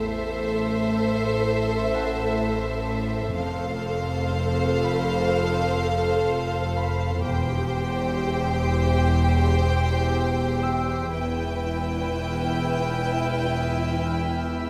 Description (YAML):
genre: cinematic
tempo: 62 BPM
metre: 4/4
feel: straight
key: unclear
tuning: A4 = 440 Hz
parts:
  - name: warm symphonic violin section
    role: melody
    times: 0.0-14.7 s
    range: E5 to G5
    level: -33 LUFS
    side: equal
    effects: none
  - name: rich studio violin section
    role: second line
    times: 0.0-14.7 s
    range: B4 to C5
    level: -33 LUFS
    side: equal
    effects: none
  - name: dark symphonic viola section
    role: accompaniment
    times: 0.0-14.7 s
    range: E4 to A4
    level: -32 LUFS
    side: equal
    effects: none
  - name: rich symphonic cello section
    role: bass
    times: 0.0-14.7 s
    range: E2 to A2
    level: -32 LUFS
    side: equal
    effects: none
  - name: warm symphonic double bass section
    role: bass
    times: 0.0-14.7 s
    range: E1 to A1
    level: -31 LUFS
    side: equal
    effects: none
  - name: organ-like drone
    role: drone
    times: 0.1-14.7 s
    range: A1 to F2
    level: -31 LUFS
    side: equal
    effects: ensemble chorus, built-in reverb
  - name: concert harp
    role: texture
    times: 1.9-14.5 s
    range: F#4 to E6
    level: -39 LUFS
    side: equal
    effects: none
  - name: warm symphonic violin section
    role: texture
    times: 11.1-14.7 s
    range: E6 to B6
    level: -42 LUFS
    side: equal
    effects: none
room: moderate scoring stage reverb, RT60 1.6 s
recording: none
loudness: -24 LUFS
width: mono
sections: 0.0-14.7 A section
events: none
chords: 0.0 Am; 3.4 F; 7.2 C/E; 11.1 Em